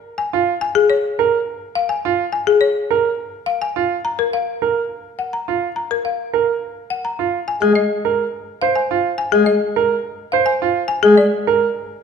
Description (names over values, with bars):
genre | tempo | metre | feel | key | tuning
classical, minimalist pattern music | 105 BPM | 3/4 | straight | F phrygian | A4 = 440 Hz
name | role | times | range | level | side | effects
folk marimba with hard mallets | melody | 0.2-11.4 s | Ab4 to Bb5 | -18 LUFS | left 6 dB | none
clear grand piano | arpeggios | 0.3-11.7 s | F4 to C5 | -19 LUFS | right 7 dB | none
chamber organ, principal chorus | accompaniment | 7.6-11.2 s | Ab3 | -17 LUFS | equal | none
room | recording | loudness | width
moderate recital hall reverb, RT60 1.7 s | minimal, uncompressed stereo recording | -16 LUFS | side -6 dB against mid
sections
0.0-12.0 A section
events
none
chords
0.3 Db6 (rootless); 7.2 Fm; 10.6 Bb7(no3)